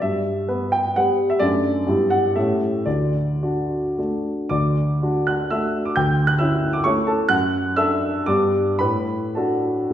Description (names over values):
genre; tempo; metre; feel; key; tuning
classical, romantic triple-time dance for piano with dotted rhythms; 102-142 BPM; 3/4; rubato; D major; A4 = 440 Hz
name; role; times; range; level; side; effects
warm baby grand piano; solo; 0.0-9.9 s; D2 to G6; -18 LUFS; equal; none
room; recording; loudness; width
wet recital hall reverb, RT60 1.5 s; heard from further back in the room; -18 LUFS; side -10 dB against mid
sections
0.0-4.5 A section; 4.5-9.9 A section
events
none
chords
0.0 Em/G; 1.4 D/F#; 1.9 Em7/G; 2.4 A7; 2.9 D; 5.9 A7/D; 7.3 D/F#; 8.3 G; 8.8 D/A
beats
| 0.03 0.49 0.97 | 1.41 1.86 2.36 | 2.86 3.42 3.98 | 4.51 5.01 5.50 | 5.94 6.38 6.84 | 7.29 7.76 8.26 | 8.79 9.37 9.91